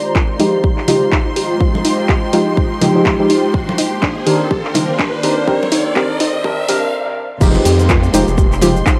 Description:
deep house; 124 BPM; 4/4; swing 57% on 16ths; F minor; A4 = 440 Hz
hollow soft pad; sustained chords; 0.0-9.0 s; Ab3 to C5; -28 LUFS; equal; ensemble chorus, vintage 12-bit sampler grit, sidechain pumping
riser and downlifter; sound effects; 1.4-9.0 s; -28 LUFS; equal
ethereal airy pad; texture; 0.0-9.0 s; Eb3 to Bb5; -26 LUFS; equal; ensemble chorus, built-in reverb, sidechain pumping
rich studio violin section; texture; 0.0-9.0 s; C6; -31 LUFS; equal; sidechain pumping
soft round pluck; arpeggios; 0.2-8.9 s; D4 to G4; -23 LUFS; equal; chorus, sidechain pumping, tape echo
electronic kick drum; drums; 0.2-9.0 s; -18 LUFS; equal; small room ambience
house drum kit; drums; 0.2-9.0 s; crash cymbal, handclaps, hi-hat; -24 LUFS; equal; high-pass filter on snare, small room ambience, high-pass filter on hats, high-pass filter on cymbals
deep mellow chord stab; stabs; 0.4-8.8 s; Eb3 to Bb4; -20 LUFS; equal; chorus, sidechain pumping, tape echo
congas; percussion; 0.9-8.7 s; -24 LUFS; equal
round analog bass; bass; 7.4-8.8 s; F1 to F2; -18 LUFS; equal; tube saturation, sidechain pumping
cabasa; percussion; 7.4-9.0 s; -31 LUFS; equal
light reverb; dry, gritty hardware recording, high-pass filter; -15 LUFS; mono
0.0-7.4 A section; 7.4-9.0 B section
build-up 0.0-7.4; filter sweep on synth arpeggio sound 0.0-7.4; filter sweep 0.0-7.4; riser 1.5-6.9; stop 6.9-7.4; drop 7.4-9.0
0.0 Fm9; 3.5 Cm9; 7.4 Fm9

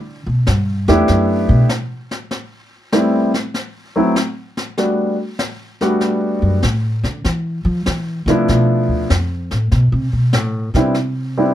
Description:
jazz piano trio; 97 BPM; 4/4; swing 67% on 8ths; G major; A4 = 441 Hz
upright bass; bass; 0.0-1.6, 6.4-11.5 s; D2 to F3; -16 LUFS; equal
snare drum and brushed snare drum; drums; 0.5-11.5 s; -24 LUFS; left 2 dB
warm grand piano; melody; 0.9-11.5 s; F3 to G4; -16 LUFS; equal
light reverb; dark, warm production; -15 LUFS; side -12 dB against mid
0.0-4.8 A section; 4.8-11.5 A section
upright bass solo 0.0-11.5
0.0 G6; 2.3 Am7; 3.5 N.C.; 4.8 Gmaj7; 7.2 Dm69; 9.7 Cmaj7(no3)

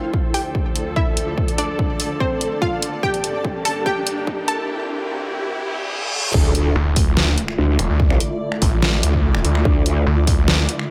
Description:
heavy wobble dubstep; 145 BPM; 4/4; half-time; D minor; A4 = 440 Hz
unison pluck; melody; 0.0-4.7 s; C4 to A5; -27 LUFS; equal; delay
dark symphonic string section; sustained chords; 0.0-10.9 s; C2 to A4; -29 LUFS; equal; sidechain pumping, low-pass filter
riser, reverse cymbal and impact; sound effects; 2.6-8.0 s; -32 LUFS; equal
granular cloud pad; texture; 0.0-10.9 s; D4 to A5; -32 LUFS; equal; built-in reverb, sidechain pumping
electronic kick drum; drums; 0.1-10.4 s; -23 LUFS; equal
dubstep drum kit; drums; 0.3-10.9 s; crash cymbal, finger snaps, hi-hat, snare drum; -24 LUFS; equal
growl bass; bass; 6.3-10.1 s; C2 to D2; -20 LUFS; equal; chorus, overdrive
snarling distorted saw bass; bass; 6.8-10.7 s; E1 to D2; -20 LUFS; equal; distortion, overdrive
light reverb; high-pass filter; -20 LUFS; mono
0.0-6.3 A section; 6.3-10.9 B section
build-up 0.0-6.3; filter sweep 0.0-6.3; riser 2.6-6.3; drum fill 3.0-4.7; reverse cymbal 5.5-6.3; drop 6.3-10.9; impact 6.3-8.0
0.0 Dm; 3.0 Gm; 4.7 C; 6.3 Dmadd9

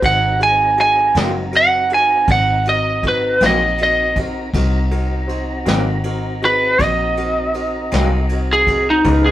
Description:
slow blues; 53 BPM (dotted quarters); 12/8; straight; Ab mixolydian; A4 = 441 Hz
clear upright piano; accompaniment; 0.0-9.3 s; C4 to C5; -28 LUFS; left 1 dB
tonewheel organ; sustained chords; 0.0-9.3 s; Ab3 to Bb5; -27 LUFS; equal; slow rotary speaker, overdrive
vintage muted fingered electric bass; bass; 0.0-9.3 s; Gb1 to Db2; -21 LUFS; equal
vintage brush drum kit; drums; 0.0-9.2 s; kick drum, ride cymbal, snare drum; -25 LUFS; equal
lightly driven lead guitar; melody; 0.1-9.3 s; Eb4 to Ab5; -14 LUFS; right 1 dB
electric guitar through a small old amp; accompaniment; 1.1-9.3 s; Ab2 to Eb4; -22 LUFS; left 1 dB; tremolo
dark horn section; sustained chords; 9.1-9.3 s; Cb5 to F5; -26 LUFS; right 3 dB
moderate small room reverb, RT60 0.5 s; rough rehearsal-room recording; -14 LUFS; side -13 dB against mid
0.0-9.3 A section
lead electric guitar solo 0.0-9.3
0.0 Ab9

